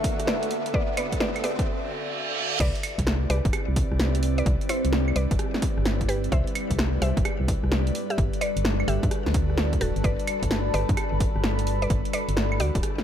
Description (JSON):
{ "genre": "UK garage, two-step garage", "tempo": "129 BPM", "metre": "4/4", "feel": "swing 66% on 16ths", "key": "C lydian", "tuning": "A4 = 440 Hz", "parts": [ { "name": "airy breathy pad", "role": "sustained chords", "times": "0.0-13.0 s", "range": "D3 to Db6", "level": "-36 LUFS", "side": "left 1 dB", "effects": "chorus, sidechain pumping" }, { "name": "electronic kick drum", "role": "drums", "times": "0.0-12.8 s", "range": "none", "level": "-27 LUFS", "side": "equal", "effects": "overdrive" }, { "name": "punchy analog drum machine", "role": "drums", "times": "0.0-13.0 s", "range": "claves, crash cymbal, hi-hat, rim click, snare drum", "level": "-29 LUFS", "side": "equal", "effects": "overdrive" }, { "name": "riser and reverse cymbal", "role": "sound effects", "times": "0.0-2.6 s", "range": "none", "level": "-31 LUFS", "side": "right 3 dB", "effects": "none" }, { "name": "deep dark ambient pad", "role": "texture", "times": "0.0-13.0 s", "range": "D3 to B5", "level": "-31 LUFS", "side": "equal", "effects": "chorus, built-in reverb, sidechain pumping" }, { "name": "mallet-like synth pluck", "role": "melody", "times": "0.3-12.8 s", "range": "E4 to E5", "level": "-32 LUFS", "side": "equal", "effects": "chorus, ping-pong delay" }, { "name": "organ-like FM bass", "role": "bass", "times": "2.6-12.8 s", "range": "D1 to G2", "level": "-25 LUFS", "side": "equal", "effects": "none" } ], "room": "light reverb, digital ambience", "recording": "none", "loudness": "-22 LUFS", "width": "side -10 dB against mid", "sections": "0.0-2.6 A section; 2.6-13.0 B section", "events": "build-up 0.0-2.6; riser 0.0-1.7; break 1.7-2.6; reverse cymbal 1.7-2.6; drop 2.6-13.0", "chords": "0.0 Dmaj9; 2.6 Cmaj9; 7.9 Gmaj9" }